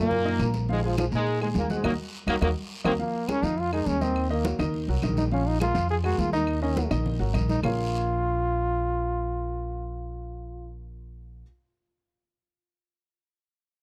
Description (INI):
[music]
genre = latin, salsa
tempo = 207 BPM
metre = 4/4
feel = straight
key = Bb minor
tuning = A4 = 440 Hz
[part]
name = clear trombone section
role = melody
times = 0.0-2.9 s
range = Ab2 to F4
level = -29 LUFS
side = equal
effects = none
[part]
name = warm baby grand piano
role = accompaniment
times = 0.0-11.4 s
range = Eb3 to Gb6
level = -34 LUFS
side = equal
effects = none
[part]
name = upright bass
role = bass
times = 0.0-11.4 s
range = Ab1 to Bb2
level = -31 LUFS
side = equal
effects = none
[part]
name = congas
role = percussion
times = 0.1-7.7 s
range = none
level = -35 LUFS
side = equal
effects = none
[part]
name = guiro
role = percussion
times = 0.1-7.7 s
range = none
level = -46 LUFS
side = equal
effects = none
[part]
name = claves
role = percussion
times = 0.4-7.7 s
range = none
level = -42 LUFS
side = equal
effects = none
[part]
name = bright trombone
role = melody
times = 2.8-10.7 s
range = Bb3 to Ab4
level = -31 LUFS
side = equal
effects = none
[sound]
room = little or no reverb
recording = dry, close 1970s-style studio recording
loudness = -26 LUFS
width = mono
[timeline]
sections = 0.0-3.0 A section; 3.0-7.6 B section; 7.6-10.0 C section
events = band accent 1.8-3.0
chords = 0.0 Ebm; 0.7 Bb5; 1.8 Ebm; 3.0 Bb5; 4.2 Ebm; 5.3 Bb5; 6.5 Ebm; 7.6 Bbm7